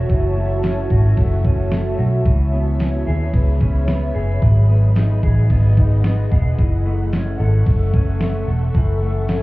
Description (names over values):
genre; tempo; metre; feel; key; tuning
dream pop; 111 BPM; 4/4; straight; unclear; A4 = 440 Hz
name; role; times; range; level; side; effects
ethereal airy pad; sustained chords; 0.0-9.4 s; F#4 to C#6; -28 LUFS; right 1 dB; ensemble chorus, built-in reverb
electric guitar through a small old amp; arpeggios; 0.0-9.4 s; E3 to A4; -26 LUFS; left 2 dB; lush chorus, tape echo
vintage muted fingered electric bass; bass; 0.0-9.4 s; E1 to D#2; -16 LUFS; equal; none
detuned 8-bit digital drum machine; drums; 0.1-9.4 s; kick drum, ride cymbal, snare drum, tambourine; -18 LUFS; equal; none
room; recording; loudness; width
little or no reverb; heard muffled through a wall, cassette tape, club reverb, EQ; -15 LUFS; side -20 dB against mid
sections
0.0-9.4 A section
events
none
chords
0.0 F#m7; 2.3 C#m7; 4.4 G#m7; 6.6 F#m7